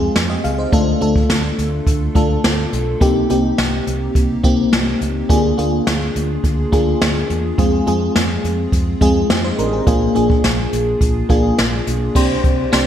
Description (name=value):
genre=1980s-style pop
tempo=105 BPM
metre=4/4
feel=straight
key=unclear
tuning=A4 = 440 Hz
part: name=FM electric piano with soft pad layer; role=accompaniment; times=0.0-12.9 s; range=Ab3 to F5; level=-17 LUFS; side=left 1 dB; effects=chorus, phaser
part: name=vintage muted fingered electric bass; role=bass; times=0.0-12.9 s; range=A1 to F2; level=-22 LUFS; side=equal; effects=none
part: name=jazz brush drum kit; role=drums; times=0.2-12.9 s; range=crash cymbal, hi-hat, kick drum, snare drum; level=-18 LUFS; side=equal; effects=gated reverb
room=wet lush hall reverb, RT60 2.1 s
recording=bright 1980s-style digital production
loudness=-14 LUFS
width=side -10 dB against mid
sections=0.0-12.2 A section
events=none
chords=0.0 Fm; 0.7 Dm; 3.0 Cm7; 5.3 Bb7/D; 7.6 Fm; 9.9 Bb7; 12.2 Gsus4/C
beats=0.15 | 0.73 1.30 1.87 2.44 | 3.01 3.58 4.16 4.73 | 5.30 5.87 6.44 7.01 | 7.58 8.15 8.73 9.30 | 9.87 10.44 11.01 11.58 | 12.15 12.73